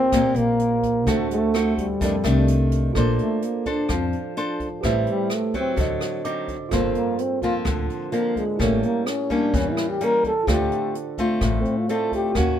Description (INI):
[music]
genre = bossa nova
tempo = 128 BPM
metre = 4/4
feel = straight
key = unclear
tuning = A4 = 443 Hz
[part]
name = breathy trombone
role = melody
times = 0.0-12.6 s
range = G3 to Bb4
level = -23 LUFS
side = equal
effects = none
[part]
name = bright tine electric piano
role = accompaniment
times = 0.0-12.6 s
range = D4 to D6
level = -29 LUFS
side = right 6 dB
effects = none
[part]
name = nylon-string guitar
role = accompaniment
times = 0.0-12.6 s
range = F2 to C5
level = -25 LUFS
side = left 2 dB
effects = none
[part]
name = upright bass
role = bass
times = 0.0-12.6 s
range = G1 to F2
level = -24 LUFS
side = left 1 dB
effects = none
[part]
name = jazz brush drum kit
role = drums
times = 0.1-12.5 s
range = hi-hat, kick drum, rim click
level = -30 LUFS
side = equal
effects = none
[sound]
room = light reverb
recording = minimal, uncompressed stereo recording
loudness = -20 LUFS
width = side -10 dB against mid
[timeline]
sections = 0.0-3.0 A section; 3.0-12.6 B section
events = trombone solo 3.0-12.6; tine electric piano fill 6.0-6.7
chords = 0.0 Eb6; 1.1 D7; 2.0 F13; 3.0 Bbmaj9; 4.8 Am7; 5.8 D7b9; 6.7 Gm11; 8.6 A7b9; 10.5 Dm7